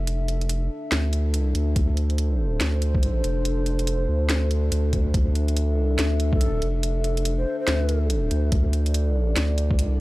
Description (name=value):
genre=deep dubstep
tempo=142 BPM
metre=4/4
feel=swing 61% on 16ths, half-time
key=D minor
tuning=A4 = 440 Hz
part: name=dark analog pad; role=sustained chords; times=0.0-10.0 s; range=D4 to E5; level=-30 LUFS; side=left 1 dB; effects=chorus
part: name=saturated sub bass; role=bass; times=0.0-10.0 s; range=F1 to D2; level=-22 LUFS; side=equal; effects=none
part: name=garage drum kit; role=drums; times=0.1-9.9 s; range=hi-hat, snare drum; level=-28 LUFS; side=equal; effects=overdrive, studio reverb
part: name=electronic kick drum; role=drums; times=1.8-9.8 s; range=none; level=-22 LUFS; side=equal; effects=overdrive, studio reverb
part: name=breathy mellow ney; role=melody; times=6.3-8.0 s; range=A4 to C5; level=-33 LUFS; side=equal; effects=dub echo
room=little or no reverb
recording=dry, gritty hardware recording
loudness=-21 LUFS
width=side -19 dB against mid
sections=0.0-10.0 A section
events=none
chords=0.0 Dm